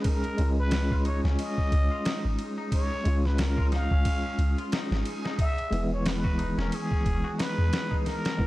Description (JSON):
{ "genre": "trip hop", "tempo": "90 BPM", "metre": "4/4", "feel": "swing 58% on 16ths", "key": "unclear", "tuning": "A4 = 440 Hz", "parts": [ { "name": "trumpet with plunger mute", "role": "melody", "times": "0.0-8.5 s", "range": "G#4 to F5", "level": "-34 LUFS", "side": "equal", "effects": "tape echo" }, { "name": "overdriven tine electric piano", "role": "accompaniment", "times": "0.0-8.5 s", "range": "E3 to Ab4", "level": "-31 LUFS", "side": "equal", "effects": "tremolo, tape echo" }, { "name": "twangy electric guitar", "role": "arpeggios", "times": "0.0-8.2 s", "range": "Db4 to Gb4", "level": "-40 LUFS", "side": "left 6 dB", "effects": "tape echo" }, { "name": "trip hop sampler-style drum kit", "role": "drums", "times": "0.0-8.5 s", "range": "kick drum, ride cymbal, snare drum", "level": "-29 LUFS", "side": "equal", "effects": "none" }, { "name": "backwards swelling texture", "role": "texture", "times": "0.0-8.5 s", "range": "Ab4", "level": "-44 LUFS", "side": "equal", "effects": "built-in reverb" }, { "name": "soft 808-style bass", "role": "bass", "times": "0.4-8.5 s", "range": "E1 to E2", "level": "-26 LUFS", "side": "equal", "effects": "none" } ], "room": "digital ambience", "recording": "dark, warm production", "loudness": "-24 LUFS", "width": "side -17 dB against mid", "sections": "0.0-8.5 A section", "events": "none", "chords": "0.1 Db; 5.4 E" }